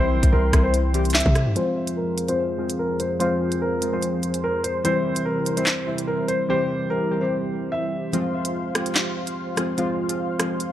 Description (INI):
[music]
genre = hip hop, drill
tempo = 146 BPM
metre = 4/4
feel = half-time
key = F harmonic minor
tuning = A4 = 440 Hz
[part]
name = dark concert grand piano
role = melody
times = 0.0-8.1 s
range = Bb4 to E5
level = -25 LUFS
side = left 1 dB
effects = low-pass filter, digital delay
[part]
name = warbly lo-fi synth keys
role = accompaniment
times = 0.0-10.7 s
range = E3 to G4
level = -26 LUFS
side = left 1 dB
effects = chorus, low-pass filter
[part]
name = warm analog pad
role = sustained chords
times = 0.0-10.7 s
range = F2 to C6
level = -30 LUFS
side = right 2 dB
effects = chorus, low-pass filter
[part]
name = hard-hitting 808-style bass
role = bass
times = 0.0-1.6 s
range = Bb1 to C3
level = -21 LUFS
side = equal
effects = none
[part]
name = drill drum kit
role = drums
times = 0.2-10.7 s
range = handclaps, hi-hat, kick drum, rim click, snare drum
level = -22 LUFS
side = equal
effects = none
[sound]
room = digital ambience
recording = none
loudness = -20 LUFS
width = side -12 dB against mid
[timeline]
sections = 0.0-1.6 A section; 1.6-8.1 B section; 8.1-10.7 C section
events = filter sweep 1.6-8.1; kick muted 8.1-10.7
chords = 0.0 C; 1.6 Fm; 4.8 C; 8.1 Fm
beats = 0.33 0.74 1.15 | 1.56 1.97 2.38 2.79 | 3.20 3.61 4.03 4.44 | 4.85 5.26 5.67 6.08 | 6.49 6.90 7.31 7.72 | 8.13 8.55 8.96 9.37 | 9.78 10.19 10.60